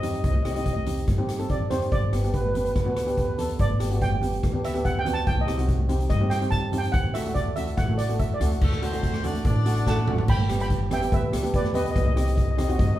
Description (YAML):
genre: calypso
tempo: 143 BPM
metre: 4/4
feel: straight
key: G major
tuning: A4 = 440 Hz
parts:
  - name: steel pan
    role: melody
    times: 0.0-13.0 s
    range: B4 to B5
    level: -30 LUFS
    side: right 2 dB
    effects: none
  - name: steel pan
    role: accompaniment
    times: 0.0-12.9 s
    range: A3 to A4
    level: -30 LUFS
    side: equal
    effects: none
  - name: upright bass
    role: bass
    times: 0.0-13.0 s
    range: G1 to G2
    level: -26 LUFS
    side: equal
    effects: none
  - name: street-band drum kit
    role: drums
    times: 0.0-12.9 s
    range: crash cymbal, hi-hat, kick drum, rim click, snare drum, toms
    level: -27 LUFS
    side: equal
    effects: none
  - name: congas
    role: percussion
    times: 0.0-12.9 s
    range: none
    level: -35 LUFS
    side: right 3 dB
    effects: none
  - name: brilliant horn section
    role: second line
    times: 8.6-10.2 s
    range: A3 to D5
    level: -32 LUFS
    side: equal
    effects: none
room: wet large studio reverb, RT60 0.9 s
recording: band playing live in one room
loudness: -22 LUFS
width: side -14 dB against mid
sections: 0.0-8.6 A section; 8.6-10.3 B section; 10.3-13.0 C section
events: steel pan solo 0.0-8.6; drum fill 9.9-10.3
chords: 0.0 Cm; 1.9 G; 5.3 Cm; 6.9 D; 10.3 G; 12.0 Cm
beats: | 0.24 0.66 1.08 1.50 | 1.92 2.33 2.75 3.17 | 3.59 4.01 4.43 4.85 | 5.26 5.68 6.10 6.52 | 6.94 7.36 7.78 8.19 | 8.61 9.03 9.45 9.87 | 10.28 10.70 11.12 11.54 | 11.96 12.37 12.79